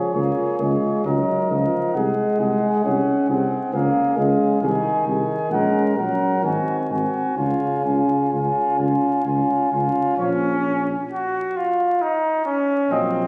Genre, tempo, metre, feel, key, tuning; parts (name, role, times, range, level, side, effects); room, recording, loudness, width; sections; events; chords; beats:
classical, brass quintet; 66 BPM; 3/4; straight; Db major, Bb minor from 10.2 s; A4 = 444 Hz
mellow cornet; melody; 0.0-13.3 s; Db5 to Ab5; -27 LUFS; equal
warm trumpet; second line; 0.0-13.3 s; C4 to Bb4; -27 LUFS; equal
clear trombone; accompaniment; 0.0-13.2 s; Db3 to Db4; -26 LUFS; equal
mellow French horn; accompaniment; 0.0-13.2 s; Bb3 to F4; -29 LUFS; equal
mellow bass trombone; bass; 0.1-13.3 s; Ab1 to Db2; -28 LUFS; equal
moderate concert hall reverb, RT60 2.2 s; recorded on a phone in the room, studio reverb, vinyl crackle, compression; -21 LUFS; mono
0.0-10.2 A section; 10.2-13.3 B section
0.0 Db; 1.0 Ebm7/Db; 1.9 Ab7/C; 3.7 Db; 4.6 Ab/C; 5.5 Gb/Bb; 6.4 Ab7; 7.4 Db; 10.2 Bbm
0.14 1.05 | 1.94 2.85 3.74 | 4.62 5.52 6.43 | 7.37 8.31 9.24 | 10.18 11.09 11.99 | 12.90